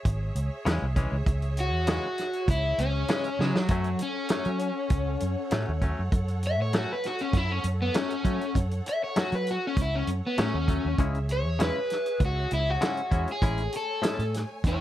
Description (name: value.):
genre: straight-eighth soul blues.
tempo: 99 BPM.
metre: 4/4.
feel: straight.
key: unclear.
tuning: A4 = 438 Hz.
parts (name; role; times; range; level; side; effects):
clear studio string section; sustained chords; 0.0-14.8 s; A3 to G#5; -40 LUFS; right 1 dB; none.
vintage muted fingered electric bass; bass; 0.1-14.8 s; G#1 to F#3; -28 LUFS; equal; none.
warm soul drum kit; drums; 0.1-14.8 s; hi-hat, kick drum, snare drum; -28 LUFS; equal; none.
direct-recorded clean electric guitar; stabs; 0.7-14.2 s; F#2 to E4; -32 LUFS; left 2 dB; none.
overdriven semi-hollow guitar; melody; 1.6-14.8 s; F#3 to E5; -29 LUFS; left 1 dB; none.
room: little or no reverb.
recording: none.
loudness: -25 LUFS.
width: side -13 dB against mid.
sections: 0.0-14.8 A section.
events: overdriven electric guitar solo 0.0-14.8; drum fill 3.4-3.7.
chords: 0.0 C#m; 3.7 F#m; 11.0 C#m; 13.4 Amaj7.